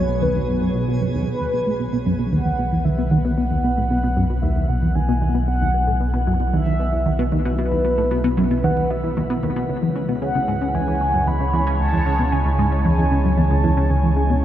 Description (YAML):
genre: ambient, sequencer-driven space music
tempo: 114 BPM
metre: 4/4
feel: straight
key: unclear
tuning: A4 = 440 Hz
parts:
  - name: mellow horn-like synth lead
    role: melody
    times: 0.0-14.4 s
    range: B4 to B5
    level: -24 LUFS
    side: equal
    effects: wide subtle chorus, shimmer reverb, analog delay
  - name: sweeping resonant pad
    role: sustained chords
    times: 0.0-14.4 s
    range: B2 to C#5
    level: -27 LUFS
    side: right 1 dB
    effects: chorus
  - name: tight sequenced synth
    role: riff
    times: 0.0-14.3 s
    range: C#2 to C#3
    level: -21 LUFS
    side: equal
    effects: chorus, phaser, analog delay
  - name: warm sub bass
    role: bass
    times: 0.0-14.4 s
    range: B1 to C#2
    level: -22 LUFS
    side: equal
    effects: none
  - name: twinkling granular texture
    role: texture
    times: 0.0-1.3 s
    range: G#4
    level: -40 LUFS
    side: right 1 dB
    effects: built-in reverb, shimmer reverb
room: moderate huge ambient reverb, RT60 8.0 s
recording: dark, warm production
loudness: -17 LUFS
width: side -11 dB against mid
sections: 0.0-1.3 A section; 1.3-14.4 B section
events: fade-in on analog synth pad 1.3-14.4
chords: 0.0 Bsus4; 9.7 C#m